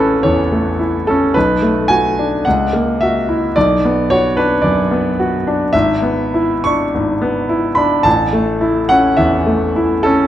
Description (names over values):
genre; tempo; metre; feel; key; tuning
classical, romantic character piece for solo piano; 108 BPM; 4/4; rubato; A major; A4 = 440 Hz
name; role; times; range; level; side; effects
bright grand piano; solo; 0.0-10.3 s; G#1 to C#6; -12 LUFS; equal; none
room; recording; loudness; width
moderate recital hall reverb, RT60 1.5 s; dark, warm production; -12 LUFS; side -12 dB against mid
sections
0.0-10.3 A section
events
none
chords
0.0 A; 1.4 Bm7; 2.5 F#7/C#; 3.6 Bm; 5.7 E7/G#; 8.1 A